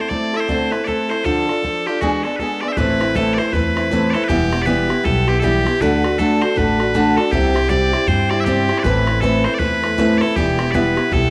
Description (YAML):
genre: celtic folk, Celtic hornpipe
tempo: 158 BPM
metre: 4/4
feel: swing 60% on 8ths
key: A dorian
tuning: A4 = 442 Hz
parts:
  - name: loud bright bagpipes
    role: melody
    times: 0.0-11.3 s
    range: F#4 to E5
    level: -24 LUFS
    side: equal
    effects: none
  - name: picked acoustic archtop guitar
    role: accompaniment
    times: 0.0-11.3 s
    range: A2 to B4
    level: -20 LUFS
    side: equal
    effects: none
  - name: bodhran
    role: percussion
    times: 0.1-11.2 s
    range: none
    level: -29 LUFS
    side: equal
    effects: none
  - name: upright bass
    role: bass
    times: 2.8-11.3 s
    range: E1 to G2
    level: -24 LUFS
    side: equal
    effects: none
room: wet spring reverb, RT60 1.3 s, studio reverb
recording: none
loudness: -17 LUFS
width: mono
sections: 0.0-2.8 A section; 2.8-11.3 B section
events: none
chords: 0.0 Am; 1.2 Dm; 2.0 E7; 2.8 Amadd9; 4.3 Em; 5.8 D; 7.3 C; 8.8 Amadd9; 10.4 Em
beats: 0.11 0.49 0.87 | 1.25 1.63 2.01 2.39 | 2.77 3.15 3.53 3.91 | 4.29 4.67 5.05 5.43 | 5.81 6.19 6.57 6.95 | 7.32 7.70 8.08 8.46 | 8.84 9.22 9.60 9.98 | 10.36 10.74 11.12